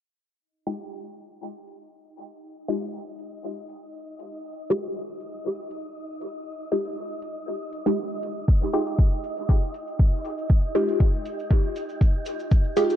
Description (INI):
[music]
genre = dub techno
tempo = 119 BPM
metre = 4/4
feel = swing 53% on 16ths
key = F minor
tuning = A4 = 443 Hz
[part]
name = wind-like tuned noise texture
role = texture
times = 1.7-13.0 s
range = Eb4 to Eb5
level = -36 LUFS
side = right 1 dB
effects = built-in reverb, sidechain pumping
[part]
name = filtered dub chord stab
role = stabs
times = 0.7-13.0 s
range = Ab3 to G4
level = -27 LUFS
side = equal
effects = phaser, sidechain pumping, dub echo
[part]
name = electronic hi-hat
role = drums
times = 0.7-13.0 s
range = none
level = -49 LUFS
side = left 1 dB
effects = overdrive, low-pass filter on hats
[part]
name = electronic kick drum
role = drums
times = 8.5-12.6 s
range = none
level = -19 LUFS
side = equal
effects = none
[part]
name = cabasa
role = percussion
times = 8.5-13.0 s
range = none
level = -50 LUFS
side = right 4 dB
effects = none
[sound]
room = light reverb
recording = low-pass filter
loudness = -23 LUFS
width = side -11 dB against mid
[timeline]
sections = 0.4-13.0 A section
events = filter sweep on drum 0.4-13.0; filter sweep on synth stab 0.4-13.0; filter sweep 0.4-13.0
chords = 0.4 Fm9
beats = | 0.41 0.92 1.42 1.93 | 2.43 2.94 3.44 3.94 | 4.45 4.95 5.46 5.96 | 6.46 6.97 7.47 7.98 | 8.48 8.99 9.49 9.99 | 10.50 11.00 11.51 12.01 | 12.52